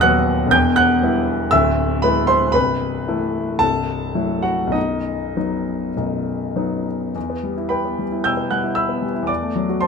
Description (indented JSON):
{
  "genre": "classical, romantic character piece for solo piano",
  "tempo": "96-124 BPM",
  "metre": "4/4",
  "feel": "rubato",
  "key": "E minor",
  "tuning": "A4 = 442 Hz",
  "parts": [
    { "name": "clear grand piano", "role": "solo", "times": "0.0-9.9 s", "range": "B0 to G6", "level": "-17 LUFS", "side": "equal", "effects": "none" }
  ],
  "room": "light reverb",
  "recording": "close, detailed microphones",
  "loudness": "-17 LUFS",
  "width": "side -5 dB against mid",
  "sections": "0.0-7.2 A section; 7.2-9.9 B section",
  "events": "none",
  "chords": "0.0 B/D#; 0.5 Em; 1.5 E7/D; 2.5 Am/C; 3.6 F#m7b5/C; 4.8 B; 7.2 Em; 9.3 F#dim/E"
}